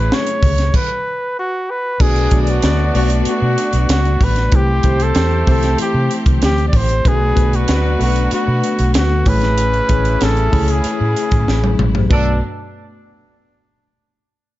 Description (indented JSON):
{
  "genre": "polished 1980s jazz-funk pop",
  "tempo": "95 BPM",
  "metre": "4/4",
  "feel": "straight",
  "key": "B dorian",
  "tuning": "A4 = 441 Hz",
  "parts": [
    { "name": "warm flugelhorn", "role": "melody", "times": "0.0-12.4 s", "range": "D4 to D5", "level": "-20 LUFS", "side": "equal", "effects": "none" },
    { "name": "tine electric piano", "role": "accompaniment", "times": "0.0-12.4 s", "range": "A3 to D5", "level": "-22 LUFS", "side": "left 3 dB", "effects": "medium stereo tremolo, wide subtle chorus" },
    { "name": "clear studio string section", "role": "sustained chords", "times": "0.0-12.4 s", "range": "B2 to G#4", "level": "-28 LUFS", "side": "equal", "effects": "none" },
    { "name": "vintage muted fingered electric bass", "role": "bass", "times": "0.0-12.4 s", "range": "A1 to C3", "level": "-16 LUFS", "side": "equal", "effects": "none" },
    { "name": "crisp fusion drum kit", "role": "drums", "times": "0.1-12.3 s", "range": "crash cymbal, hi-hat, kick drum, snare drum, toms", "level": "-18 LUFS", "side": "equal", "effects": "none" },
    { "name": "dark horn section", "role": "second line", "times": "2.0-12.3 s", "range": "E3 to D5", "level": "-27 LUFS", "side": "right 2 dB", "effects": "none" }
  ],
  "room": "small room ambience",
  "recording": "dark, warm production, nothing above 7.7 kHz",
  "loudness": "-13 LUFS",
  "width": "side -16 dB against mid",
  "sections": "0.0-2.0 A section; 2.0-12.1 B section; 12.1-14.6 C section",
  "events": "stop 0.7-2.0; drum fill 11.5-12.1",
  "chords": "0.0 Amaj7; 0.7 N.C.; 2.0 Bm7; 4.5 C6; 7.1 Bm7; 9.3 Amaj7; 12.1 Bm7"
}